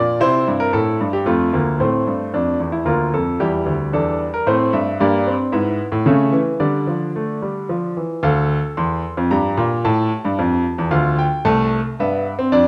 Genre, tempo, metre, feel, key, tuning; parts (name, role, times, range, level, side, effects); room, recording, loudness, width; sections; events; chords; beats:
classical, baroque-style 4-part fugue for grand piano; 112 BPM; 3/4; straight; F major, D minor from 5.0 s; A4 = 440 Hz
clear grand piano; solo; 0.0-12.7 s; C2 to C6; -18 LUFS; equal
wet stone room reverb, RT60 1.3 s; dark, warm production; -19 LUFS; mono
0.0-1.8 A section; 1.8-8.2 B section; 8.2-12.7 C section
0.2 C; 1.3 F; 2.9 Bb/D; 3.4 Em7; 4.5 Am; 5.0 Gmadd11; 5.5 E/G#; 6.1 A/C#; 6.6 Dm; 9.3 Gm; 9.8 A5; 10.9 Dm; 11.4 Am/C
| 0.19 0.72 1.25 | 1.79 2.33 2.86 | 3.39 3.92 4.45 | 4.99 5.52 6.05 | 6.60 7.14 7.69 | 8.23 8.77 9.31 | 9.84 10.38 10.91 | 11.45 11.98 12.52